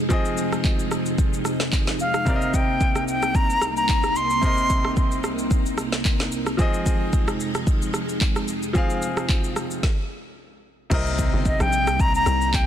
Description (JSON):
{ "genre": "amapiano", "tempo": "111 BPM", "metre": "4/4", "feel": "swing 55% on 16ths", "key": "C minor", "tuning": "A4 = 440 Hz", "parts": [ { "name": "bright baby grand piano", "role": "accompaniment", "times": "0.0-12.7 s", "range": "C3 to F5", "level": "-29 LUFS", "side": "left 1 dB", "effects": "none" }, { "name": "string machine, violins", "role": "sustained chords", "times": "0.0-12.7 s", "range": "C2 to Eb4", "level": "-28 LUFS", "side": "equal", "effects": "ensemble chorus, sidechain pumping" }, { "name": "deep house drum kit", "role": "drums", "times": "0.1-12.7 s", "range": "crash cymbal, handclaps, kick drum, rim click, shaker, snare drum", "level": "-23 LUFS", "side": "equal", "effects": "none" }, { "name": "bright concert flute", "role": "melody", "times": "2.0-5.2, 11.5-12.7 s", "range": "Eb5 to C6", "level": "-22 LUFS", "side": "left 1 dB", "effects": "tape echo" }, { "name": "tight log drum bass", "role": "bass", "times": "10.9-12.7 s", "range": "G1 to C2", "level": "-24 LUFS", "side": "equal", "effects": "none" } ], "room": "light reverb", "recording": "dense, heavily limited modern master", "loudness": "-20 LUFS", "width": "side -10 dB against mid", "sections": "0.0-10.9 A section; 10.9-12.7 B section", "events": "stop 9.8-10.9; drop 10.9-12.7", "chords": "0.0 Fm7; 2.3 Cm7; 6.6 Fm7; 10.9 Cm7", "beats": "| 0.10 0.64 1.19 1.73 | 2.27 2.81 3.35 3.89 | 4.43 4.97 5.51 6.05 | 6.59 7.13 7.67 8.21 | 8.75 9.29 9.83 10.37 | 10.91 11.46 12.00 12.54" }